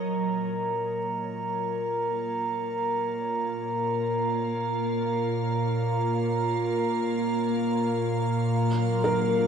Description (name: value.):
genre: ambient.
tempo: free time.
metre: none.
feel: none.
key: Bb minor.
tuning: A4 = 441 Hz.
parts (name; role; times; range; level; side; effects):
soft additive organ-like pad; sustained chords; 0.0-9.5 s; Bb2 to F5; -28 LUFS; right 1 dB; ensemble chorus, built-in reverb, phaser.
felt-muted upright piano; arpeggios; 0.0-1.0, 9.0-9.5 s; F4 to Bb4; -25 LUFS; equal; none.
analog drone; drone; 0.3-9.5 s; Bb3 to F4; -35 LUFS; equal; chorus.
glass harmonica; texture; 0.0-9.5 s; Bb4 to Bb5; -28 LUFS; right 1 dB; none.
room: wet cathedral reverb, RT60 6.0 s.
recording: in a vast, echoing space, cassette tape.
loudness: -25 LUFS.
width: side -7 dB against mid.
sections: 0.0-9.5 A section.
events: fade-in on ambient pad 0.0-9.5; fade-in on synth drone 0.0-9.5.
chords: 0.0 Bbm; 8.5 Gbmaj7.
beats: free time.